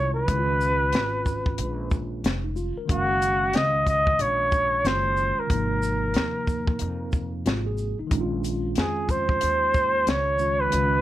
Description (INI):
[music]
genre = hip hop, jazz-hop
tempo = 92 BPM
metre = 4/4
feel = swing 63% on 16ths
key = Bb minor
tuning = A4 = 441 Hz
[part]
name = breathy flugelhorn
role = melody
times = 0.0-11.0 s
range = Gb4 to Eb5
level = -23 LUFS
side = equal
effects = plate reverb
[part]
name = mellow tine electric piano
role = accompaniment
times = 0.0-11.0 s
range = C3 to F5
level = -31 LUFS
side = right 1 dB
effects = medium stereo tremolo
[part]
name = upright bass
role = bass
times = 0.0-11.0 s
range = F1 to F2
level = -29 LUFS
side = equal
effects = none
[part]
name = compact cocktail drum kit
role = drums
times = 0.3-10.9 s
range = hi-hat, kick drum, shaker, snare drum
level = -26 LUFS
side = left 1 dB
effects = none
[sound]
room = light reverb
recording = none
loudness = -22 LUFS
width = side -14 dB against mid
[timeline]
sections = 0.0-11.0 A section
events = kick muted 10.7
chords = 0.3 Db13; 2.9 Gbmaj7; 5.5 Ab69; 8.1 Bbm11